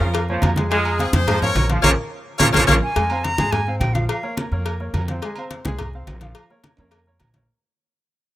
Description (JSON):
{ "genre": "latin, salsa", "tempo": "212 BPM", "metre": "4/4", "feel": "straight", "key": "F minor", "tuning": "A4 = 437 Hz", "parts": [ { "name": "brilliant horn section", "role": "melody", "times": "0.0-2.7 s", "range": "F4 to Db5", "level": "-21 LUFS", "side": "left 2 dB", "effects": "none" }, { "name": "brilliant trombone section", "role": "second line", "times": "0.0-2.8 s", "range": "Db3 to Bb3", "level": "-25 LUFS", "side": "right 2 dB", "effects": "none" }, { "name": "clear concert grand piano", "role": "accompaniment", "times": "0.0-7.5 s", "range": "F3 to Ab5", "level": "-28 LUFS", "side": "equal", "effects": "none" }, { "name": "upright bass", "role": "bass", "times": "0.0-7.5 s", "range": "Bb1 to Ab2", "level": "-22 LUFS", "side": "equal", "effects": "none" }, { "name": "congas", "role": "percussion", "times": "0.0-7.5 s", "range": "none", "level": "-24 LUFS", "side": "equal", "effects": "none" }, { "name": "agogo bells and timbales", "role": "percussion", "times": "0.1-7.4 s", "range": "none", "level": "-32 LUFS", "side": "right 4 dB", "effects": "none" }, { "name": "cowbell", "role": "percussion", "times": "0.1-7.5 s", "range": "none", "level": "-29 LUFS", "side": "left 6 dB", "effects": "none" }, { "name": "bright reedy silver concert flute", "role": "melody", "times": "2.8-4.4 s", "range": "F5 to Bb5", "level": "-24 LUFS", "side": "equal", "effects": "none" } ], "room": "little or no reverb", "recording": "rough home demo mix", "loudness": "-17 LUFS", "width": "side -14 dB against mid", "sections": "0.0-3.0 A section; 3.0-7.5 B section", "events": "band accent 1.8-3.0; drum fill 2.3-3.0, 6.8-7.5; fade-out 3.0-7.5", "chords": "0.0 Bbm; 0.7 Fm; 1.8 Bbm; 3.0 Fm; 4.1 Bbm; 5.2 Fm; 6.4 Bbm" }